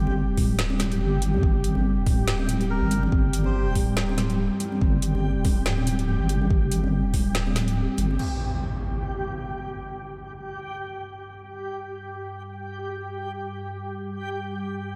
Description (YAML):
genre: deep dubstep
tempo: 142 BPM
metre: 4/4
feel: swing 56% on 16ths, half-time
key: unclear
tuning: A4 = 441 Hz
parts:
  - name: dark analog pad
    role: sustained chords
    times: 0.0-15.0 s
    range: G3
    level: -35 LUFS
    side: equal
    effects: chorus, phaser
  - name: deep soft wobble bass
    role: bass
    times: 0.0-8.2 s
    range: D1 to D2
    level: -27 LUFS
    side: equal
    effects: chorus, tube saturation
  - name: backwards swelling texture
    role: texture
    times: 0.0-15.0 s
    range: G4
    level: -37 LUFS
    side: equal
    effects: built-in reverb, subtle chorus
  - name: congas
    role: percussion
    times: 0.1-8.2 s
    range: none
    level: -33 LUFS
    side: equal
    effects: dub echo
  - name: electronic kick drum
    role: drums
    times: 0.4-7.2 s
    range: none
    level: -25 LUFS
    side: equal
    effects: none
  - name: garage drum kit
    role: drums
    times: 0.4-8.3 s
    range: crash cymbal, hi-hat, snare drum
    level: -35 LUFS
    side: equal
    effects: overdrive
  - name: melodica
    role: melody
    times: 2.7-3.8 s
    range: Bb4 to C5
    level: -41 LUFS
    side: equal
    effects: dub echo
  - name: impact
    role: sound effects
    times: 8.2-9.9 s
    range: none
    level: -34 LUFS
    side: equal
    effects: none
room: moderate cathedral reverb, RT60 6.0 s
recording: dreamy mix soaked in reverb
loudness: -25 LUFS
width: mono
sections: 0.0-8.2 A section; 8.2-15.0 B section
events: impact 8.2-9.9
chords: 0.0 G5; 8.2 N.C.